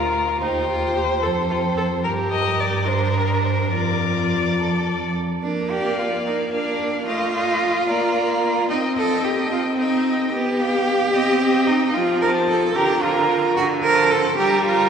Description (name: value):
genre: quick classical-period movement for string quartet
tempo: 74 BPM (dotted quarters)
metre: 6/8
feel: straight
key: Bb major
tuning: A4 = 440 Hz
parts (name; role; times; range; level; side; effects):
- rich violin; melody; 0.0-14.9 s; Bb4 to Bb5; -25 LUFS; left 1 dB; none
- warm violin; second line; 0.0-14.9 s; F4 to F5; -27 LUFS; equal; none
- rich viola; accompaniment; 0.0-14.9 s; D3 to A4; -24 LUFS; equal; none
- rich cello; bass; 0.0-14.9 s; D2 to Bb4; -21 LUFS; right 2 dB; none
room: wet cathedral reverb, RT60 4.7 s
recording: recorded in a church or concert hall, small room ambience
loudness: -18 LUFS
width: side -7 dB against mid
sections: 0.0-5.4 A section; 5.4-14.9 B section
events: none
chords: 0.4 Cm/Eb; 1.2 F; 2.0 Gm; 3.7 Bb/F; 5.4 Bb; 7.1 F7/A; 7.9 Bb; 8.7 Cm; 10.3 G7/B; 11.1 Cm; 11.9 F; 12.8 Bb/D; 13.6 D7(no3); 14.4 Gm